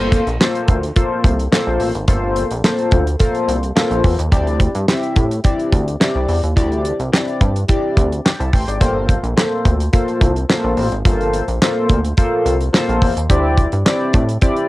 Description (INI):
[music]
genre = early-eighties boogie funk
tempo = 107 BPM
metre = 4/4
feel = straight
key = G dorian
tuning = A4 = 441 Hz
[part]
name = chorused polysynth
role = accompaniment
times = 0.0-14.7 s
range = Bb3 to C6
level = -19 LUFS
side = left 1 dB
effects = tremolo, cassette tape, plate reverb
[part]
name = chorused synth bass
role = bass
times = 0.0-14.4 s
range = G1 to A2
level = -19 LUFS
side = equal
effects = none
[part]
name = damped 70s drum kit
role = drums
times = 0.1-14.7 s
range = handclaps, hi-hat, kick drum, snare drum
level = -15 LUFS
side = equal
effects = none
[sound]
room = light reverb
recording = home recording on cassette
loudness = -14 LUFS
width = side -18 dB against mid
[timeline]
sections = 0.0-14.7 A section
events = none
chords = 0.0 Gm11; 4.3 D9sus4; 8.8 Gm11; 13.3 D9sus4